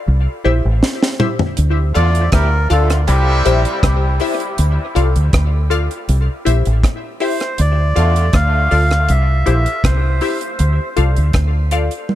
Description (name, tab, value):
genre	dub reggae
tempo	80 BPM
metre	4/4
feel	straight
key	D minor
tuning	A4 = 441 Hz
part	deep dub fingered electric bass	bass	0.1-11.9 s	A1 to E2	-14 LUFS	equal	none
part	filtered dub chord stab	stabs	0.4-11.9 s	E4 to F5	-22 LUFS	left 4 dB	phaser, dub echo
part	deep reggae drum kit	drums	0.8-12.2 s	hi-hat, kick drum, rim click, snare drum, toms	-19 LUFS	equal	none
part	warm horn section	second line	1.9-8.3 s	C3 to G4	-25 LUFS	equal	dub echo
part	melodica	melody	2.0-10.4 s	G4 to F5	-22 LUFS	right 1 dB	dub echo
room	small room ambience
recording	echo-heavy mix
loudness	-13 LUFS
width	side -13 dB against mid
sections	0.0-12.2 A section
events	drum fill 0.8-1.6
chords	0.1 C; 1.6 Dm; 3.1 C; 4.6 Dm; 6.1 C; 7.6 Dm; 9.1 C; 10.6 Dm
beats	0.07 0.82 | 1.57 2.33 3.08 3.83 | 4.58 5.33 6.08 6.83 | 7.58 8.34 9.09 9.84 | 10.59 11.34 12.09